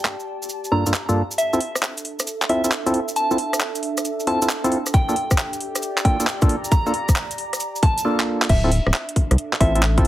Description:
UK garage, two-step garage; 135 BPM; 4/4; swing 67% on 16ths; D minor; A4 = 439 Hz
warbly tape-like pad; texture; 0.0-10.1 s; D4 to Bb5; -30 LUFS; right 1 dB; chorus, built-in reverb, sidechain pumping
garage drum kit; drums; 0.1-10.1 s; crash cymbal, handclaps, hi-hat, rim click; -24 LUFS; equal; high-pass filter on snare, high-pass filter on hats, high-pass filter on cymbals
cabasa; percussion; 0.1-8.0 s; -29 LUFS; right 1 dB
soft synth bell; melody; 0.7-9.8 s; E5 to Bb5; -26 LUFS; equal; chorus, tape echo
percussive organ stab; stabs; 0.7-10.1 s; G2 to A4; -22 LUFS; equal; chorus
electronic kick drum; drums; 4.9-10.0 s; -18 LUFS; equal
rubbery square bass; bass; 8.5-10.1 s; D1 to C2; -18 LUFS; equal; tube saturation, sidechain pumping
moderate studio reverb, RT60 0.6 s; heavily compressed radio sound; -18 LUFS; side -14 dB against mid
0.0-1.4 A section; 1.4-8.5 B section; 8.5-10.1 C section
filter sweep on drum 0.0-1.4; build-up 1.4-8.5; filter sweep on synth stab 1.4-8.5; drum fill 8.2-8.5; drop 8.5-10.1
0.0 Gm9; 1.4 Dm9; 4.9 Gm9; 8.5 Dm9

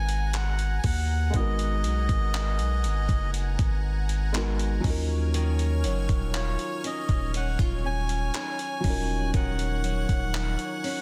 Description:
contemporary R&B; 60 BPM; 4/4; straight; G# minor; A4 = 439 Hz
melodica; melody; 0.0-11.0 s; C#5 to G#5; -35 LUFS; equal; digital delay
clear baby grand piano; accompaniment; 0.0-11.0 s; E#3 to A#4; -38 LUFS; equal
lush unison pad; sustained chords; 0.0-11.0 s; C#5 to F#6; -42 LUFS; equal; chorus
long sustained 808-style bass; bass; 0.0-10.6 s; D#1 to D#2; -29 LUFS; equal
dusty soul sampler-style drum kit; drums; 0.1-11.0 s; handclaps, hi-hat, kick drum; -32 LUFS; equal; overdrive
flamenco guitar; arpeggios; 5.3-11.0 s; D#3 to E#4; -37 LUFS; equal
studio ambience; dense, heavily limited modern master; -27 LUFS; mono
0.0-11.0 A section
0.0 G#m9; 4.8 D#m9

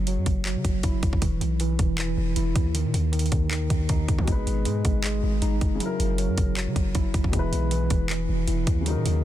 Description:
hip hop, trap; 157 BPM; 4/4; half-time; A4 = 440 Hz
mellow tine electric piano; arpeggios; 0.0-9.2 s; D#3 to E4; -28 LUFS; right 2 dB; medium stereo tremolo, low-pass filter, ping-pong delay
warm 808-style bass; bass; 0.0-9.2 s; E1 to D#3; -26 LUFS; equal
trap drum kit; drums; 0.1-9.1 s; handclaps, hi-hat, kick drum; -26 LUFS; equal
dark concert grand piano; accompaniment; 4.2-9.2 s; B2 to B4; -32 LUFS; left 4 dB; low-pass filter
little or no reverb; dense, heavily limited modern master; -22 LUFS; side -12 dB against mid
0.0-9.2 A section
0.0 F#5; 1.2 E5; 2.7 D#5; 4.3 G#m; 5.8 F#7; 7.3 E

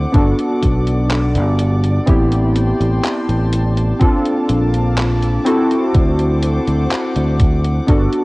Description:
vaporwave; 62 BPM; 4/4; straight; A4 = 440 Hz
warbly lo-fi synth keys; accompaniment; 0.0-8.2 s; B3 to A4; -17 LUFS; equal; analog chorus, analog delay
dark studio string section; sustained chords; 0.0-8.2 s; Bb3 to D6; -27 LUFS; left 1 dB
fingered electric bass; bass; 0.0-8.1 s; G1 to D2; -16 LUFS; equal; tube saturation
detuned 8-bit digital drum machine; drums; 0.1-8.2 s; handclaps, hi-hat; -26 LUFS; equal; small room ambience
electronic kick drum; drums; 0.1-8.1 s; -14 LUFS; equal; small room ambience
light reverb; worn, warbling old tape, cassette tape, warbly pitch drift; -13 LUFS; side -22 dB against mid
0.0-8.2 A section
0.1 Gmaj7; 2.1 Am9; 4.0 Bbmaj7; 5.5 D7

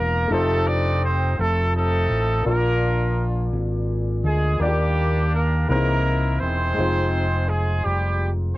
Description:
slow gospel; 56 BPM (dotted quarters); 6/8; straight; A4 = 445 Hz
clear horn section; melody; 0.0-8.6 s; G3 to D5; -23 LUFS; right 1 dB; cassette tape
warm baby grand piano; accompaniment; 0.0-8.6 s; Bb2 to D5; -27 LUFS; left 2 dB
fingered electric bass; bass; 0.0-8.5 s; E1 to Eb2; -22 LUFS; equal
light reverb; home recording on cassette; -19 LUFS; side -18 dB against mid
0.0-8.6 A section
0.3 F7; 2.5 Bb; 4.6 Ebmaj7; 5.7 C7alt; 6.8 Fm7

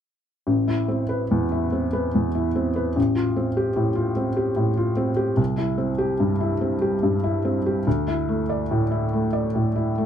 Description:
classical; 73 BPM; 3/4; rubato; A minor; A4 = 441 Hz
felt-muted upright piano; accompaniment; 0.5-10.1 s; A1 to D5; -20 LUFS; equal
light reverb; dark, warm production; -20 LUFS; side -9 dB against mid
0.5-10.1 A section
0.5 Amadd9; 3.0 Fadd9/A; 5.4 C; 7.9 Dsus2

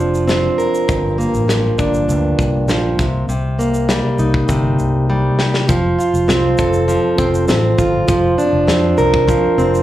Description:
acoustic pop; 100 BPM; 4/4; straight; A4 = 439 Hz
fingerpicked plugged-in steel-string acoustic guitar; accompaniment; 0.0-9.8 s; G2 to Bb4; -15 LUFS; right 1 dB; slapback echo
fingered electric bass; bass; 0.0-9.8 s; F1 to F2; -19 LUFS; equal
loose indie drum kit; drums; 0.1-9.8 s; kick drum, shaker, snare drum; -20 LUFS; left 1 dB
moderate club reverb, RT60 0.5 s; live gig heard through the venue's PA, club reverb; -13 LUFS; side -13 dB against mid
0.0-5.7 A section; 5.7-9.8 B section
drum fill 5.1-5.7
0.0 Bbadd9/F; 0.9 Gm7; 3.0 Cm7; 5.7 F; 8.1 Bbadd9/F

